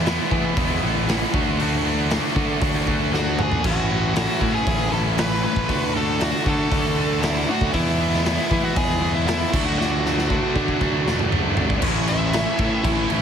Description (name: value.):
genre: quiet-loud alternative rock.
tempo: 117 BPM.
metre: 4/4.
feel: straight.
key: A major.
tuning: A4 = 443 Hz.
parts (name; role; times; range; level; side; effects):
distorted electric guitar; riff; 0.0-13.2 s; A2 to F#4; -23 LUFS; equal; overdrive.
fuzz picked electric bass; bass; 0.0-13.2 s; E1 to E3; -24 LUFS; equal; overdrive.
raw garage drum kit; drums; 0.1-13.2 s; crash cymbal, hi-hat, kick drum, snare drum, toms; -24 LUFS; equal; none.
smooth overdriven lead guitar; melody; 3.2-13.1 s; E4 to B5; -26 LUFS; equal; none.
room: light reverb, small room reverb.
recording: heavily compressed radio sound, multiband compression.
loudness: -18 LUFS.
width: side -8 dB against mid.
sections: 0.0-11.8 A section; 11.8-13.2 B section.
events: drum fill 3.1-3.6, 9.8-11.8; lead electric guitar solo 11.8-13.2.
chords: 0.0 E; 1.3 D; 3.6 A; 5.7 D; 7.7 E; 9.5 D; 11.8 A.